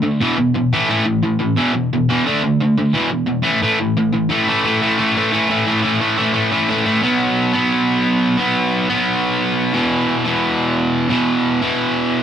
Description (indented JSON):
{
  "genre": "punk",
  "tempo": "176 BPM",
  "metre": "4/4",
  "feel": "straight",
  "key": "unclear",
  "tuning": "A4 = 440 Hz",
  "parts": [
    { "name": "distorted electric guitar", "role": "solo", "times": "0.0-12.2 s", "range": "E2 to D4", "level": "-14 LUFS", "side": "equal", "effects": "distortion" }
  ],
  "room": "light reverb",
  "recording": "rough rehearsal-room recording",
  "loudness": "-15 LUFS",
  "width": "side -9 dB against mid",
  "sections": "0.0-4.3 A section; 4.3-7.0 B section; 7.0-12.2 C section",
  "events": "none",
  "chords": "0.2 E5; 0.7 A5; 1.6 E5; 2.2 D5; 2.9 E5; 3.4 A5; 7.0 B5; 9.7 E5"
}